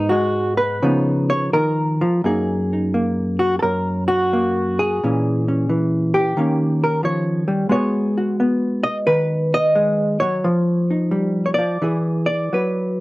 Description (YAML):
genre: solo jazz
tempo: 87 BPM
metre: 4/4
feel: swing 67% on 8ths, rubato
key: F# major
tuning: A4 = 439 Hz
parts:
  - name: hollow-body jazz guitar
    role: solo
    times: 0.0-13.0 s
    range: F#2 to D#5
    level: -17 LUFS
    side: equal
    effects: none
room: light reverb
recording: dry, close 1970s-style studio recording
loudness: -17 LUFS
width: side -19 dB against mid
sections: 0.0-2.2 A section; 2.2-13.0 B section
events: hollow-body jazz guitar solo 0.0-2.2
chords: 0.0 G#m; 0.8 C#13; 2.2 F#69; 5.0 A#m7b5; 6.4 D#7; 7.7 G#m7; 10.4 D#9/E#; 11.8 E9